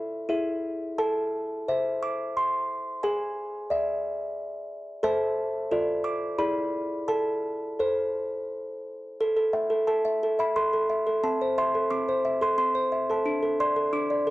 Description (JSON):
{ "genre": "classical, lullaby for music box", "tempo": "88 BPM", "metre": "3/4", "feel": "rubato", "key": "A minor", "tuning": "A4 = 440 Hz", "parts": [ { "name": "music box", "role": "solo", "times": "0.0-14.3 s", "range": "C4 to D6", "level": "-25 LUFS", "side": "equal", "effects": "none" } ], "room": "wet spring reverb, RT60 1.7 s, small room reverb", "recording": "worn, warbling old tape, cassette tape, warbly pitch drift", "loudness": "-25 LUFS", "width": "side -18 dB against mid", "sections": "0.0-9.2 A section; 9.2-14.3 B section", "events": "none", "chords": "0.3 E; 1.0 Am; 3.0 E7/G#; 5.0 Am; 5.7 Dm/F; 6.4 E7; 7.1 Am; 11.3 Am/C; 13.3 D5" }